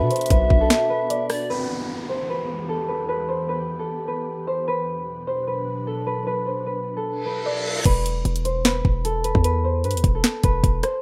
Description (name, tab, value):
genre	hip hop, trap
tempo	151 BPM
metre	4/4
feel	half-time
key	E minor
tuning	A4 = 439 Hz
part	concert harp	melody	0.0-11.0 s	A4 to D5	-28 LUFS	equal	low-pass filter
part	polished pan flute	second line	0.0-1.5 s	D5 to E5	-25 LUFS	equal	none
part	dark baby grand piano	accompaniment	0.0-1.5 s	B2 to D5	-41 LUFS	equal	low-pass filter
part	ethereal airy pad	sustained chords	0.0-7.8 s	E2 to B4	-35 LUFS	equal	ensemble chorus, built-in reverb
part	hard-hitting 808-style bass	bass	0.0-0.7, 7.9-10.8 s	E1 to B2	-24 LUFS	equal	none
part	trap drum kit	drums	0.1-1.4, 7.9-10.9 s	crash cymbal, hi-hat, kick drum, rim click, snare drum	-23 LUFS	equal	none
part	downlifter and reverse cymbal	sound effects	1.5-4.7, 7.2-7.9 s	none	-34 LUFS	equal	none
room	digital ambience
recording	rough home demo mix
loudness	-23 LUFS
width	mono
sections	0.0-1.5 A section; 1.5-7.9 B section; 7.9-11.0 C section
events	break 0.7-1.5; reverse cymbal 7.2-7.9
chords	0.0 Bm; 1.5 Em; 4.7 Bm; 7.9 E5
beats	0.30 0.70 1.10 | 1.50 1.89 2.29 2.69 | 3.09 3.48 3.88 4.28 | 4.68 5.07 5.47 5.87 | 6.26 6.66 7.06 7.46 | 7.85 8.25 8.65 9.05 | 9.44 9.84 10.24 10.64